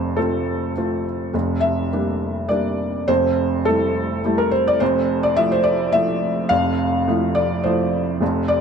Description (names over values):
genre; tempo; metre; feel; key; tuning
neoclassical minimalist piano; 105 BPM; 3/4; rubato; F major; A4 = 442 Hz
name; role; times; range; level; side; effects
felt-muted upright piano; solo; 0.0-8.6 s; F1 to F5; -18 LUFS; equal; none
room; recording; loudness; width
light reverb; dark, warm production; -18 LUFS; side -6 dB against mid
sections
0.0-8.6 A section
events
none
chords
0.0 F; 1.3 Gm7/F; 3.1 Am7/F; 4.8 Fmaj7